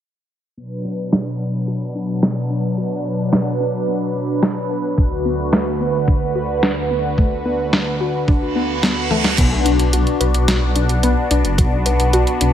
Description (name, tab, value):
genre	synthwave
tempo	109 BPM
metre	4/4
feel	straight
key	B minor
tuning	A4 = 439 Hz
part	phased analog pad	sustained chords	0.6-12.5 s	D2 to B4	-20 LUFS	equal	phaser, chorus, sidechain pumping
part	warbly dusty pluck	arpeggios	0.6-12.5 s	A3 to B4	-24 LUFS	left 3 dB	chorus, cassette tape, digital delay
part	detuned 8-bit digital drum machine	drums	1.1-12.5 s	crash cymbal, hi-hat, snare drum, toms	-20 LUFS	equal	none
part	electronic kick drum	drums	5.0-11.7 s	none	-16 LUFS	equal	none
part	reverse cymbal	sound effects	8.5-9.4 s	none	-25 LUFS	right 4 dB	none
part	dark detuned saw bass	bass	9.4-12.5 s	F#1 to B1	-17 LUFS	equal	none
room	light reverb, digital ambience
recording	low-pass filter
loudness	-16 LUFS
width	side -10 dB against mid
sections	0.6-9.4 A section; 9.4-12.5 B section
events	filter sweep on analog synth pad 0.6-9.4; filter sweep on synth arpeggio sound 0.6-9.4; filter sweep 0.6-9.4; reverse cymbal 8.5-9.4; drum fill 9.1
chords	0.6 Bm; 5.0 D6; 9.4 Bm